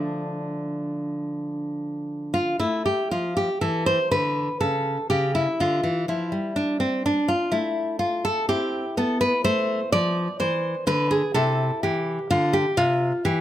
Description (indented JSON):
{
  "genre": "classical, baroque-style dance for nylon-string guitar",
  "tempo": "62 BPM",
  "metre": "3/4",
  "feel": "uneven beats, rubato",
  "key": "A minor",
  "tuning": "A4 = 440 Hz",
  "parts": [
    { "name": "nylon-string guitar", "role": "solo", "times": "0.0-13.4 s", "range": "C3 to D5", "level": "-22 LUFS", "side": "equal", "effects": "none" }
  ],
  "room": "light reverb",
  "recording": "close, detailed microphones",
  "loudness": "-22 LUFS",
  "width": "side -12 dB against mid",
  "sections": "0.0-2.6 A section; 2.6-13.4 A section",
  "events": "none",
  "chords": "0.0 Dm; 2.6 A5; 4.6 N.C.; 5.6 Dm; 8.5 Am; 10.4 E7b13; 11.4 C69"
}